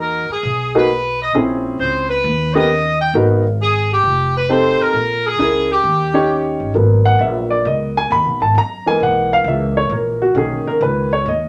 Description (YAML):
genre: jazz, big band swing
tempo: 133 BPM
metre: 4/4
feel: swing 68% on 8ths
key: G# minor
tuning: A4 = 441 Hz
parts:
  - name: clear saxophone section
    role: melody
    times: 0.0-6.6 s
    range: G4 to G5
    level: -19 LUFS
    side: equal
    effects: none
  - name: warm grand piano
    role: accompaniment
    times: 0.0-11.5 s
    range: D#3 to B5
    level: -18 LUFS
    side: equal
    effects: none
  - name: upright bass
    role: bass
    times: 0.0-11.5 s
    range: F1 to F#2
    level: -23 LUFS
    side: equal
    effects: none
room: wet small room reverb, RT60 0.5 s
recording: none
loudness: -16 LUFS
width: mono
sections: 0.0-6.7 A section; 6.7-11.5 B section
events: grand piano solo 6.7-11.5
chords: 0.0 Emaj9#11; 1.3 A#m7b5; 2.2 D#7b13; 3.1 G#m9; 4.0 F7; 4.9 A#m7b5; 5.8 D#7; 6.7 G#m9; 8.5 F#7; 10.4 Bmaj7